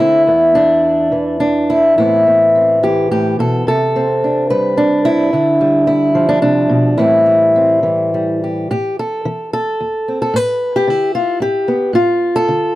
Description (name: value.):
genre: folk, solo fingerstyle acoustic guitar.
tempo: 102-114 BPM.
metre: 3/4.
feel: rubato.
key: A minor.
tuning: A4 = 440 Hz.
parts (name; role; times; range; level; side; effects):
fingerpicked old ladder-braced acoustic guitar; solo; 0.0-12.8 s; E2 to B4; -12 LUFS; equal; none.
room: little or no reverb.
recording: dry, close 1970s-style studio recording.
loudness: -12 LUFS.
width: side -16 dB against mid.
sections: 0.0-8.7 A section; 8.7-12.8 B section.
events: none.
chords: 0.3 E5; 2.0 Amadd9; 3.7 Csus2; 5.3 Dm; 7.0 Am7; 8.7 Am; 10.3 G/A; 11.9 Dm/A.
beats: | 0.25 0.82 1.39 | 1.97 2.54 3.10 | 3.66 4.22 4.76 | 5.31 5.87 6.42 | 6.98 7.55 8.13 | 8.71 9.26 9.80 | 10.35 10.88 11.41 | 11.94 12.48.